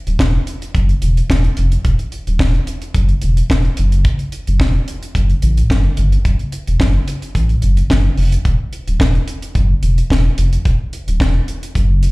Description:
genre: early-eighties boogie funk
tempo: 109 BPM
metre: 4/4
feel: straight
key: unclear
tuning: A4 = 440 Hz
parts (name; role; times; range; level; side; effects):
- saturated sub bass; bass; 0.1-12.1 s; D1 to A1; -13 LUFS; equal; none
- tight funk drum kit; drums; 0.1-12.1 s; handclaps, hi-hat, kick drum, snare drum; -18 LUFS; equal; none
room: little or no reverb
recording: live gig heard through the venue's PA, club reverb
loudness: -13 LUFS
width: side -23 dB against mid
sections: 0.0-12.1 A section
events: none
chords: none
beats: 0.19 0.74 1.29 | 1.84 2.39 2.94 3.50 | 4.05 4.60 5.15 5.70 | 6.25 6.80 7.35 7.90 | 8.45 9.00 9.55 10.10 | 10.65 11.20 11.75

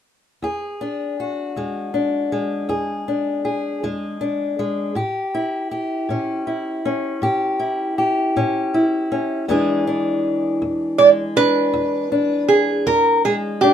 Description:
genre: acoustic country blues, solo or duo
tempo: 53 BPM (dotted quarters)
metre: 12/8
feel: straight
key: E mixolydian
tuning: A4 = 435 Hz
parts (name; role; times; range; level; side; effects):
- fingerpicked steel-string acoustic guitar; accompaniment; 0.4-13.7 s; E2 to G#4; -20 LUFS; left 2 dB; none
- lap resonator guitar; melody; 11.0-13.7 s; G4 to D5; -14 LUFS; right 4 dB; none
room: moderate studio reverb, RT60 0.6 s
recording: minimal, uncompressed stereo recording, lossy compression artefacts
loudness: -18 LUFS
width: side -9 dB against mid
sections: 0.4-9.5 A section; 9.5-13.7 B section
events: none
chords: 0.4 E7; 5.0 A7; 9.5 E7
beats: | 0.43 1.56 2.70 3.83 | 4.97 6.10 7.23 8.36 | 9.49 10.61 11.74 12.87

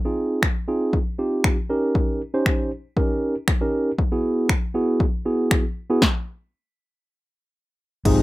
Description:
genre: dance-pop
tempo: 118 BPM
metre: 4/4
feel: straight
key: unclear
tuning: A4 = 441 Hz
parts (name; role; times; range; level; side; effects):
- mellow tine electric piano; accompaniment; 0.0-8.2 s; B3 to C5; -22 LUFS; right 1 dB; sidechain pumping
- deep house drum kit; drums; 0.4-8.2 s; crash cymbal, finger snaps, hi-hat, kick drum, snare drum; -21 LUFS; left 1 dB; none
- soft supersaw; sustained chords; 8.1-8.2 s; C3 to Eb4; -20 LUFS; left 3 dB; sidechain pumping
- vintage muted fingered electric bass; bass; 8.1-8.2 s; Ab1; -21 LUFS; left 1 dB; sidechain pumping
room: little or no reverb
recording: rough home demo mix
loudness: -20 LUFS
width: side -18 dB against mid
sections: 0.0-8.1 A section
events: stop 6.0-8.1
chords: 0.0 Ab6; 1.7 Eb7; 4.0 Eadd9; 6.0 N.C.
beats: 0.43 0.93 1.44 | 1.95 2.46 2.97 3.48 | 3.98 4.49 5.00 5.51 | 6.02 6.53 7.04 7.54 | 8.05

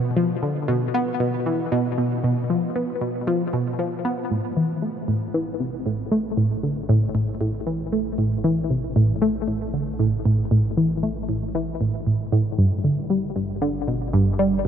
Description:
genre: ambient, sequencer-driven space music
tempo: 116 BPM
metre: 4/4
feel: straight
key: A minor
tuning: A4 = 440 Hz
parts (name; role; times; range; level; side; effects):
- analog pluck; riff; 0.0-14.7 s; G2 to B3; -20 LUFS; equal; chorus, phaser, ping-pong delay
- round analog bass; bass; 4.3-14.7 s; G1 to A1; -36 LUFS; equal; none
room: moderate huge ambient reverb, RT60 7.5 s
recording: none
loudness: -20 LUFS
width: side -8 dB against mid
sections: 0.0-4.3 A section; 4.3-14.7 B section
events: fade-in on analog synth bass 4.3-14.7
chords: 0.0 B(b5, no3); 4.3 A5; 12.6 G5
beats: | 0.17 0.69 1.20 1.72 | 2.24 2.75 3.27 3.79 | 4.31 4.82 5.34 5.86 | 6.38 6.89 7.41 7.93 | 8.44 8.96 9.48 10.00 | 10.51 11.03 11.55 12.06 | 12.58 13.10 13.62 14.13 | 14.65

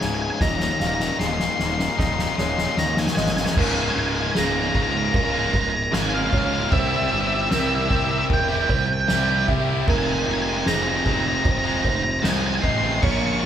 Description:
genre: post-rock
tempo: 76 BPM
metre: 4/4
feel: straight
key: Db lydian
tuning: A4 = 442 Hz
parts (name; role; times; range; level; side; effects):
- octave-fuzz lead guitar; melody; 0.0-13.5 s; E5 to Db6; -25 LUFS; right 1 dB; distortion
- felt-muted upright piano; arpeggios; 0.0-13.5 s; Ab4 to F5; -31 LUFS; right 5 dB; tape echo
- twangy electric guitar; arpeggios; 0.0-3.6 s; Eb2 to Eb4; -30 LUFS; left 2 dB; none
- distorted electric guitar; riff; 0.0-13.5 s; Db2 to Bb4; -27 LUFS; left 8 dB; overdrive
- fuzz picked electric bass; bass; 0.0-13.5 s; Db1 to Eb2; -27 LUFS; equal; overdrive
- soft-mallet drum kit; drums; 0.0-13.5 s; crash cymbal, kick drum, snare drum; -25 LUFS; equal; none
- cranked stack guitar; riff; 3.6-13.5 s; Db2 to Bb4; -28 LUFS; right 7 dB; overdrive
room: moderate large studio reverb, RT60 1.2 s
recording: band playing live in one room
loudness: -19 LUFS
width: side -9 dB against mid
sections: 0.0-3.6 A section; 3.6-13.5 B section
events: build-up 0.0-3.6; drum fill 0.0-3.6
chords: 0.4 Ebsus4; 3.6 Db6; 6.7 C7; 9.9 Fm7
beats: | 0.41 1.20 1.99 2.78 | 3.57 4.36 5.15 5.94 | 6.73 7.52 8.30 9.09 | 9.88 10.67 11.46 12.25 | 13.04

